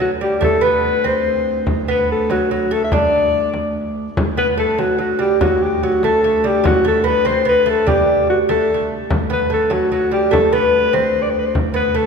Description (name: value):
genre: medieval dance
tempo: 97 BPM (dotted quarters)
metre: 6/8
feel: straight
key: D mixolydian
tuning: A4 = 440 Hz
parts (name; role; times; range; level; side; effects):
- mellow alto saxophone; melody; 0.0-12.1 s; F#4 to E5; -17 LUFS; left 3 dB; none
- lute; second line; 0.0-12.1 s; F#3 to D4; -20 LUFS; right 4 dB; none
- warm viola da gamba; drone; 0.0-12.1 s; D2; -26 LUFS; right 3 dB; none
- frame drum; percussion; 0.0-12.1 s; none; -23 LUFS; equal; none
room: wet church reverb, RT60 2.5 s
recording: recorded in a church or concert hall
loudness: -14 LUFS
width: side -5 dB against mid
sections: 0.0-4.2 A section; 4.2-12.1 A section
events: none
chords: none